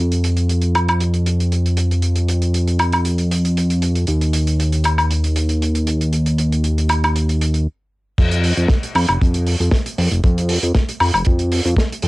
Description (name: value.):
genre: nu-disco, nu disco.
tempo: 117 BPM.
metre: 4/4.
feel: swing 53% on 16ths.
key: unclear.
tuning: A4 = 439 Hz.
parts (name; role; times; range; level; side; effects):
fat analog bass; bass; 0.0-12.1 s; F1 to F2; -16 LUFS; equal; tube saturation, sidechain pumping.
damped 70s drum kit; drums; 0.1-12.1 s; crash cymbal, hi-hat, snare drum, woodblock; -21 LUFS; equal; cassette tape.
kick drum; drums; 8.2-11.9 s; none; -16 LUFS; equal; cassette tape.
room: little or no reverb.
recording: home recording on cassette.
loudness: -15 LUFS.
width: side -21 dB against mid.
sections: 0.0-8.2 A section; 8.2-12.1 B section.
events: stop 7.7-8.2; drop 8.2-12.1.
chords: none.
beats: 0.49 1.00 1.52 | 2.03 2.54 3.06 3.57 | 4.08 4.59 5.11 5.62 | 6.13 6.64 7.16 7.67 | 8.18 8.70 9.21 9.72 | 10.23 10.75 11.26 11.77.